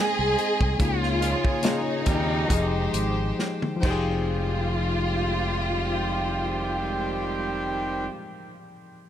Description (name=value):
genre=lush 1970s-style soul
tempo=65-74 BPM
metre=4/4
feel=swing 54% on 16ths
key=F minor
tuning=A4 = 440 Hz
part: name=rich studio violin section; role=melody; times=0.0-8.1 s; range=Eb4 to Ab4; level=-28 LUFS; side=equal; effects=tape echo
part: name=warm studio string section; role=second line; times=0.0-8.1 s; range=Ab3 to Eb5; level=-33 LUFS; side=right 1 dB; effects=none
part: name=tine electric piano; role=accompaniment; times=0.0-9.1 s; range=Db3 to C5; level=-31 LUFS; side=left 4 dB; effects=none
part: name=fingered electric bass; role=bass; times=0.2-8.1 s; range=F1 to Eb2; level=-29 LUFS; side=right 1 dB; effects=none
part: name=warm soul drum kit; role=drums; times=0.4-4.1 s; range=crash cymbal, hi-hat, kick drum, snare drum, toms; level=-26 LUFS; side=equal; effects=none
part: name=warm horn section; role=stabs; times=1.2-8.1 s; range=Bb2 to G4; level=-31 LUFS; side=right 2 dB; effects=tape echo
room=light reverb, small room ambience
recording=none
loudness=-23 LUFS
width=side -10 dB against mid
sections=0.0-4.3 A section; 4.3-8.0 B section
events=slowing down 0.0-4.3; band accent 0.8-4.3; drum fill 3.4-4.3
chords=0.0 Abmaj7; 0.8 Db69; 2.5 Fm9